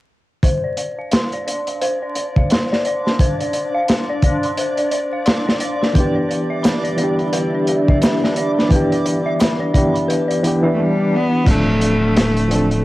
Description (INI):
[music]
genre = trip hop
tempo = 87 BPM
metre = 4/4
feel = swing 60% on 16ths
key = D dorian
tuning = A4 = 439 Hz
[part]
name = dark detuned synth bell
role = arpeggios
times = 0.4-11.5 s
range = B4 to C6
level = -22 LUFS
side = left 1 dB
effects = chorus, phaser, vintage 12-bit sampler grit, low-pass filter, cassette tape, tape echo
[part]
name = crunchy breakbeat drum kit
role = drums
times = 0.4-12.8 s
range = crash cymbal, hi-hat, kick drum, snare drum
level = -18 LUFS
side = equal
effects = none
[part]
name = backwards swelling texture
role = texture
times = 1.5-10.8 s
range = D4 to D5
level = -28 LUFS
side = right 1 dB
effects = built-in reverb, cassette tape
[part]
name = barky reed electric piano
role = accompaniment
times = 5.9-12.8 s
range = E3 to A4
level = -19 LUFS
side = equal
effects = tremolo, cassette tape, tape echo
[part]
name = dark analog pad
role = sustained chords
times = 6.8-10.7 s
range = D4 to E5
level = -23 LUFS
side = equal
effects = chorus, cassette tape
[part]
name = egg shaker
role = percussion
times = 6.6-9.6 s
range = none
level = -38 LUFS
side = right 3 dB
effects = none
[part]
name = swell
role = sound effects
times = 10.4-11.5 s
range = none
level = -26 LUFS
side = left 4 dB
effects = none
[part]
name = bright cello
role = melody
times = 10.7-12.8 s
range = G3 to B3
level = -18 LUFS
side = equal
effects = cassette tape
[part]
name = soft dub sub bass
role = bass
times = 11.5-12.8 s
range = D1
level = -19 LUFS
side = equal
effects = none
[sound]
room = light reverb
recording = home recording on cassette, vinyl crackle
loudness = -15 LUFS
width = side -17 dB against mid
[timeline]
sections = 0.4-11.5 A section; 11.5-12.8 B section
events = filter sweep on synth bell 0.4-11.5; swell 10.4-11.5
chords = 0.4 Dm7; 6.0 Em7; 11.5 Dm7